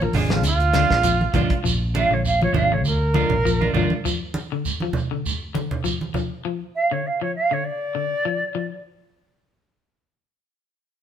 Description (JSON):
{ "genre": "afrobeat", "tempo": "100 BPM", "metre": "4/4", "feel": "swing 55% on 16ths", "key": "Bb mixolydian", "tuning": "A4 = 437 Hz", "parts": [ { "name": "silver concert flute", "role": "melody", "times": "0.0-8.8 s", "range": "F4 to F5", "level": "-22 LUFS", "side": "right 3 dB", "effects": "none" }, { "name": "electric guitar at the edge of break-up", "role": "arpeggios", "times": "0.0-8.7 s", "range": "D3 to F3", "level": "-28 LUFS", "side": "left 8 dB", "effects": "none" }, { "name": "fingered electric bass", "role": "bass", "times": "0.0-3.9 s", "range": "Ab1 to D2", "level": "-22 LUFS", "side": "equal", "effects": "none" }, { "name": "congas", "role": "percussion", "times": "0.0-6.3 s", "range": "none", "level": "-27 LUFS", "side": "right 3 dB", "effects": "none" }, { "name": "clean electric guitar", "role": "stabs", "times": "0.1-3.9 s", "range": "F3 to F4", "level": "-27 LUFS", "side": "right 4 dB", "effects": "none" }, { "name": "damped 70s drum kit", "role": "drums", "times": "0.1-1.6 s", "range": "hi-hat, kick drum, snare drum", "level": "-25 LUFS", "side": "equal", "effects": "none" }, { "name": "shekere", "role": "percussion", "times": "0.1-6.3 s", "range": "none", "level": "-29 LUFS", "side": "right 3 dB", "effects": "none" }, { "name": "barky tine electric piano", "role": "accompaniment", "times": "0.3-1.1 s", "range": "Ab3 to F4", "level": "-33 LUFS", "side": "left 3 dB", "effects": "overdrive" } ], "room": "moderate stone room reverb, RT60 1.1 s", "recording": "band playing live in one room", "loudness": "-19 LUFS", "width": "side -9 dB against mid", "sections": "0.0-8.8 A section", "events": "flute solo 0.0-8.8", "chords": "0.0 Bb7", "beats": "0.44 1.04 | 1.64 2.24 2.84 3.44 | 4.04 4.64 5.24 5.84 | 6.44 7.04 7.64 8.24" }